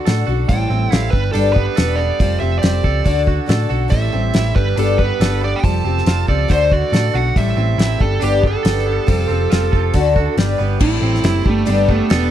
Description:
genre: folk rock and heartland rock.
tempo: 139 BPM.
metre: 4/4.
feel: straight.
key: unclear.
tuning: A4 = 440 Hz.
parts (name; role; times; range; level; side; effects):
picked twelve-string acoustic guitar; accompaniment; 0.0-12.3 s; A2 to B4; -22 LUFS; left 7 dB; none.
twangy electric guitar; riff; 0.0-12.3 s; A2 to A4; -24 LUFS; right 15 dB; none.
hollow-body short-scale picked electric bass; bass; 0.1-12.3 s; E1 to A2; -18 LUFS; equal; none.
damped 70s drum kit; drums; 0.1-12.2 s; crash cymbal, hi-hat, kick drum, snare drum; -17 LUFS; equal; none.
dark smooth lead guitar; melody; 0.5-12.3 s; G3 to A5; -21 LUFS; right 4 dB; overdrive, slapback echo.
accordion; sustained chords; 3.9-12.3 s; A3 to B4; -33 LUFS; left 3 dB; stereo widening.
room: little or no reverb.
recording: dry, close 1970s-style studio recording.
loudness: -14 LUFS.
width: side -11 dB against mid.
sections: 0.0-10.8 A section; 10.8-12.3 A section.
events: none.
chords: 0.5 Am7; 1.1 Gadd9; 2.2 Fadd9; 3.1 D; 3.9 Am7; 4.6 Gadd9; 5.6 Fadd9; 6.5 D; 7.4 Am7; 8.0 Gadd9; 9.1 Fadd9; 10.0 D; 10.4 G; 10.8 Am7; 11.5 Gadd9.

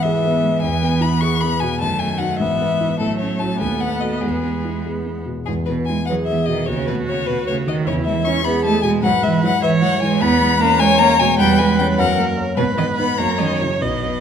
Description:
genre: quick classical-period movement for piano quartet.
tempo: 100 BPM (dotted quarters).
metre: 6/8.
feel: rubato.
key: E major.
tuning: A4 = 437 Hz.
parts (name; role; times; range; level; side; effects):
rich violin; melody; 0.0-14.2 s; G#4 to C#6; -20 LUFS; left 6 dB; none.
rich cello; second line; 0.0-14.2 s; G#2 to C#4; -21 LUFS; right 6 dB; none.
clear viola; accompaniment; 0.0-14.2 s; A3 to D#5; -25 LUFS; right 3 dB; none.
dark concert grand piano; accompaniment; 0.0-14.2 s; B1 to C#5; -22 LUFS; left 2 dB; none.
room: wet recital hall reverb, RT60 1.4 s.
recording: none.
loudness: -16 LUFS.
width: side -8 dB against mid.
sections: 0.0-5.5 A section; 5.5-14.2 A section.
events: none.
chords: 0.0 E/G#; 0.6 E; 1.8 D#dim/F#; 2.4 E/G#; 3.0 F#m7/A; 3.6 B7/D#; 4.2 E; 6.7 B7/D#; 7.9 E; 9.0 E/G#; 10.2 C#m7/E; 11.4 Em6; 12.0 F#; 12.6 G#m; 13.2 F#5.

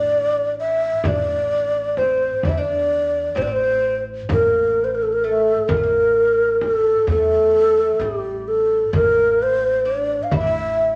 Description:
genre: Arabic maqam ensemble.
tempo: 130 BPM (eighths).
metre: 10/8.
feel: straight.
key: A maqam kurd.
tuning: A4 = 436 Hz.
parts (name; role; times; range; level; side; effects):
breathy mellow low ney; melody; 0.0-11.0 s; G4 to F5; -19 LUFS; equal; none.
oud; second line; 0.0-10.9 s; G3 to E4; -32 LUFS; equal; none.
upright bass; bass; 0.0-11.0 s; A1 to E2; -33 LUFS; equal; none.
frame drum; percussion; 1.0-10.5 s; none; -28 LUFS; equal; none.
darbuka; percussion; 8.9-10.5 s; none; -28 LUFS; equal; none.
room: moderate large studio reverb, RT60 1.1 s.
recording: none.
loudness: -19 LUFS.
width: mono.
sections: 0.0-11.0 A section.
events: none.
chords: none.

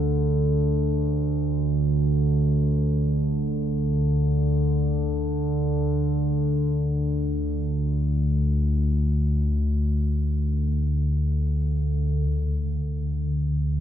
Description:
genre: ambient.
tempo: free time.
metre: none.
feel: none.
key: unclear.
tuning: A4 = 440 Hz.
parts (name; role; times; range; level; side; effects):
deep rumbling drone; solo; 0.0-13.8 s; D2 to D3; -21 LUFS; equal; built-in reverb, ping-pong delay.
room: wet cathedral reverb, RT60 6.3 s.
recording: in a vast, echoing space.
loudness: -21 LUFS.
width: side -10 dB against mid.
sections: 0.0-12.3 A section; 12.3-13.8 B section.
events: none.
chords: none.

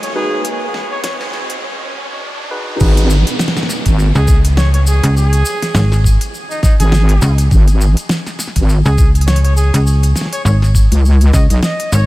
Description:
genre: glitch hop.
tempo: 102 BPM.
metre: 4/4.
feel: swing 57% on 16ths.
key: G# minor.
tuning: A4 = 438 Hz.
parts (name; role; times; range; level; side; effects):
warm trumpet; melody; 0.0-12.1 s; D#4 to D#5; -23 LUFS; equal; diffuse ambient delay.
pop drum kit; drums; 0.0-11.9 s; crash cymbal, hi-hat, snare drum; -22 LUFS; equal; none.
riser and downlifter; sound effects; 0.0-7.5 s; none; -25 LUFS; right 2 dB; none.
granular cloud pad; texture; 0.0-1.6 s; G#3 to D#5; -36 LUFS; right 1 dB; none.
bright tine electric piano; stabs; 0.2-3.1 s; D#4 to B4; -25 LUFS; equal; vintage 12-bit sampler grit, sidechain pumping, diffuse ambient delay.
wobble bass; bass; 2.8-11.6 s; G#1 to C#2; -10 LUFS; equal; chorus.
electronic kick drum; drums; 2.8-11.5 s; none; -12 LUFS; equal; none.
tube shaker; percussion; 2.8-12.1 s; none; -27 LUFS; left 1 dB; none.
slap-like FM bass; bass; 4.2-12.1 s; G#1 to C#2; -11 LUFS; equal; none.
room: light reverb, digital ambience.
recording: high-pass filter.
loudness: -10 LUFS.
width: side -18 dB against mid.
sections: 0.0-2.8 A section; 2.8-12.1 B section.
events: build-up 0.0-2.8; riser 0.0-2.8; break 1.6-2.8; drop 2.8-12.1.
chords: 0.0 G#m7; 2.8 N.C..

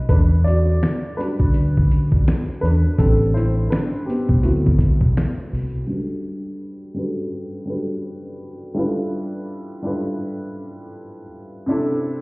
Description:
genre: lo-fi hip hop.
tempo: 83 BPM.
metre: 4/4.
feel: swing 61% on 16ths.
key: G major.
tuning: A4 = 440 Hz.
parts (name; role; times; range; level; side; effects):
dark upright piano; accompaniment; 0.0-12.2 s; C3 to D#5; -24 LUFS; equal; cassette tape, low-pass filter.
vintage muted fingered electric bass; bass; 0.1-5.7 s; A1 to E2; -17 LUFS; equal; none.
dusty soul sampler-style drum kit; drums; 0.1-5.7 s; finger snaps, hi-hat, kick drum, snare drum; -18 LUFS; equal; none.
room: digital ambience.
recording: heard muffled through a wall, stone room reverb, EQ.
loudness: -18 LUFS.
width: side -27 dB against mid.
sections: 0.0-5.9 A section; 5.9-12.2 B section.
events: upright piano solo 0.0-5.9; filter sweep on upright piano 5.9-12.2.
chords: 0.1 Em7; 3.0 Am11; 4.4 D13; 5.9 Gmaj9; 8.8 G13; 11.7 C69.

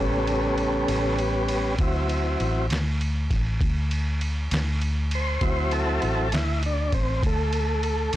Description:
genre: slow blues.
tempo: 66 BPM (dotted quarters).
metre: 12/8.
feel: straight.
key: unclear.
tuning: A4 = 440 Hz.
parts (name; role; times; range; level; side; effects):
tonewheel organ; sustained chords; 0.0-8.2 s; C#3 to C5; -25 LUFS; equal; slow rotary speaker, plate reverb.
vintage muted fingered electric bass; bass; 0.0-8.2 s; A1 to D2; -25 LUFS; equal; tube saturation.
lo-fi sampler-style drum kit; drums; 0.3-8.2 s; kick drum, ride cymbal, snare drum; -29 LUFS; equal; none.
room: light reverb.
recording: blown-out, overdriven recording, overdrive.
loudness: -22 LUFS.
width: side -14 dB against mid.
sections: 0.0-8.2 A section.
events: tonewheel organ solo 0.0-8.2; kick and snare drop out 0.9-1.8.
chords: 0.0 A7; 1.8 D7.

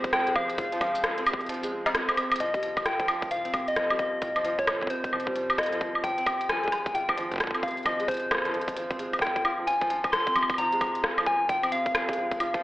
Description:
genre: IDM.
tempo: 132 BPM.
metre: 4/4.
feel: swing 62% on 16ths.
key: unclear.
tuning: A4 = 435 Hz.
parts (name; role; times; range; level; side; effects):
soft struck synth lead; melody; 0.0-12.6 s; C5 to C6; -28 LUFS; left 1 dB; chorus, tape echo.
hollow soft pad; sustained chords; 0.0-2.4 s; F3 to C5; -39 LUFS; equal; chorus.
felt-muted upright piano; arpeggios; 0.0-12.6 s; F2 to F4; -34 LUFS; right 1 dB; low-pass filter, digital delay.
metallic FM bass; bass; 0.0-12.6 s; F1 to C2; -49 LUFS; equal; none.
electronic kick drum; drums; 0.0-12.6 s; none; -35 LUFS; equal; overdrive.
organic electronic drum kit; drums; 0.0-12.6 s; cowbell, hi-hat, rim click, shaker, woodblock; -28 LUFS; equal; none.
room: moderate echo chamber reverb, RT60 1.3 s, digital ambience.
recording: telephone sound.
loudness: -24 LUFS.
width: side -16 dB against mid.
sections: 0.0-2.4 A section; 2.4-12.6 B section.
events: drum fill 2.2.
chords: 0.0 Fm; 2.4 Cm; 6.0 Abmaj7; 9.7 Fm.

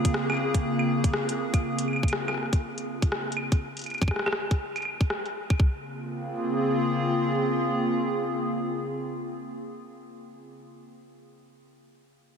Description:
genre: IDM.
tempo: 121 BPM.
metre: 4/4.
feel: swing 62% on 16ths.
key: Bb minor.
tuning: A4 = 438 Hz.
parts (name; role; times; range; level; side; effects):
hollow soft pad; sustained chords; 0.0-10.3 s; Db3 to Ab4; -28 LUFS; equal; chorus.
electro analog drum machine; drums; 0.0-5.6 s; claves, hi-hat, rim click; -31 LUFS; equal; low-pass filter on hats, low-pass filter on perc, low-pass filter on snare, low-pass filter on room, analog delay.
electronic kick drum; drums; 0.0-5.7 s; none; -23 LUFS; equal; none.
room: wet cathedral reverb, RT60 5.9 s.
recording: dreamy mix soaked in reverb.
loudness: -25 LUFS.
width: side -7 dB against mid.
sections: 0.0-5.6 A section; 5.6-9.6 B section.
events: none.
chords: 0.0 Bbm9; 3.6 N.C.; 5.6 Bbm9.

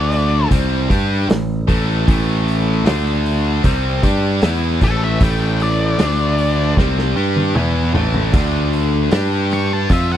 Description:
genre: blues rock power trio and southern rock.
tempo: 77 BPM.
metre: 4/4.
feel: straight.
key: unclear.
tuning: A4 = 440 Hz.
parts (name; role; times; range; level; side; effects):
octave-fuzz lead guitar; melody; 0.0-10.2 s; A4 to C#6; -21 LUFS; left 2 dB; wah, distortion, slapback echo.
distorted electric guitar; riff; 0.0-10.2 s; A2 to G4; -20 LUFS; left 1 dB; overdrive.
modern bright picked electric bass; bass; 0.0-10.2 s; A1 to G2; -18 LUFS; equal; none.
vintage drum kit; drums; 0.1-10.1 s; crash cymbal, hi-hat, kick drum, snare drum, toms; -17 LUFS; equal; none.
room: little or no reverb.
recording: none.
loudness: -14 LUFS.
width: side -11 dB against mid.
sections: 0.0-10.2 A section.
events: lead electric guitar solo 0.0-10.2; drum fill 6.8-8.3.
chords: 0.0 D5; 0.5 A5; 2.9 D5; 3.6 A5; 6.0 D5; 6.8 A5; 8.3 D5; 9.1 G5.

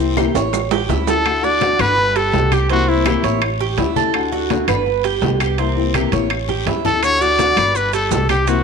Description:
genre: latin, Cuban son and guajira.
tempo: 166 BPM.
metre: 4/4.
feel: straight.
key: D major.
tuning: A4 = 439 Hz.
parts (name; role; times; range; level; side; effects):
nylon-string guitar; accompaniment; 0.0-8.6 s; B2 to G4; -22 LUFS; left 12 dB; none.
Cuban tres; arpeggios; 0.0-8.6 s; C4 to C#5; -21 LUFS; right 12 dB; none.
upright bass; bass; 0.0-8.6 s; G1 to D2; -22 LUFS; equal; none.
maracas; percussion; 0.0-1.3, 7.0-8.6 s; none; -33 LUFS; right 16 dB; none.
claves; percussion; 0.2-8.5 s; none; -28 LUFS; left 14 dB; none.
congas; percussion; 0.2-8.6 s; none; -26 LUFS; left 9 dB; none.
guiro; percussion; 0.2-8.6 s; none; -34 LUFS; left 14 dB; none.
timbales; percussion; 0.2-8.6 s; none; -24 LUFS; right 13 dB; none.
bright trumpet; melody; 1.1-3.4, 6.9-8.6 s; E4 to D5; -17 LUFS; left 2 dB; none.
room: moderate echo chamber reverb, RT60 1.9 s, small room ambience.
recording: 1960s-style stereo with parts hard left and right.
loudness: -14 LUFS.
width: side -5 dB against mid.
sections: 0.0-1.3 A section; 1.3-8.6 A section.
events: drum fill 0.2-1.3, 5.9-7.0.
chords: 0.0 C7; 0.5 A7; 1.3 D; 2.0 G; 2.7 C7; 3.4 A7; 4.1 D; 4.9 G; 5.6 C7; 6.3 A7; 7.0 D; 7.8 G.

